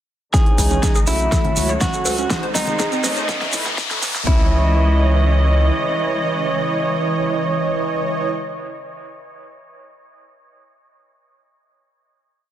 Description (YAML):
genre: progressive house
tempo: 122 BPM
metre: 4/4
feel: straight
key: C# minor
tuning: A4 = 436 Hz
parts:
  - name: direct-recorded clean electric guitar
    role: melody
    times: 0.3-8.3 s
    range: D#4 to G#4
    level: -25 LUFS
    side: equal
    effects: vintage 12-bit sampler grit, sidechain pumping, dub echo
  - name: warm symphonic string section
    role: sustained chords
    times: 0.3-8.3 s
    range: B#2 to D#5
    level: -27 LUFS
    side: equal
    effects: sidechain pumping, low-pass filter
  - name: glassy wavetable pluck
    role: arpeggios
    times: 0.3-4.5 s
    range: B3 to C#5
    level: -30 LUFS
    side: right 1 dB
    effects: chorus, sidechain pumping, dub echo
  - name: soft supersaw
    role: stabs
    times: 0.3-8.3 s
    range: E3 to E5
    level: -23 LUFS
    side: right 2 dB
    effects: sidechain pumping, low-pass filter, dub echo
  - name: electronic kick drum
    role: drums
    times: 0.3-4.4 s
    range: none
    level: -18 LUFS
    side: equal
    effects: none
  - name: pop drum kit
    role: drums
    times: 0.3-4.2 s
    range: hi-hat, snare drum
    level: -26 LUFS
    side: equal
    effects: overdrive, sidechain pumping on hats
  - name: shekere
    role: percussion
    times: 0.3-4.2 s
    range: none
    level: -27 LUFS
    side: right 2 dB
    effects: none
  - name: riser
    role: sound effects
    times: 1.8-4.3 s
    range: none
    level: -28 LUFS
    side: left 3 dB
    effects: none
  - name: round analog bass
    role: bass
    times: 0.6-5.7 s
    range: B1 to C#2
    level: -18 LUFS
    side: equal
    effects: sidechain pumping
  - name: congas and cowbell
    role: percussion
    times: 1.4-3.5 s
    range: none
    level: -30 LUFS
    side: equal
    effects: sidechain pumping on perc
room: light reverb, digital ambience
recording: dense, heavily limited modern master, high-pass filter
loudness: -16 LUFS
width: side -11 dB against mid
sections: 0.3-4.3 build; 4.3-8.2 final chord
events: build-up 0.3-4.3; drum fill 0.3-4.3; filter sweep on synth arpeggio sound 0.3-4.3; filter sweep on supersaw synth 0.3-4.3; filter sweep on string section 0.3-4.3; filter sweep 0.3-4.3; riser 1.8-4.3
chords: 0.3 C#madd9; 1.3 F#m/C#; 2.3 G#/C#; 3.3 Aadd9/C#; 4.3 C#madd9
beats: | 0.34 0.83 1.32 1.81 | 2.30 2.80 3.29 3.78 | 4.27 4.76 5.25 5.75 | 6.24 6.73 7.22 7.71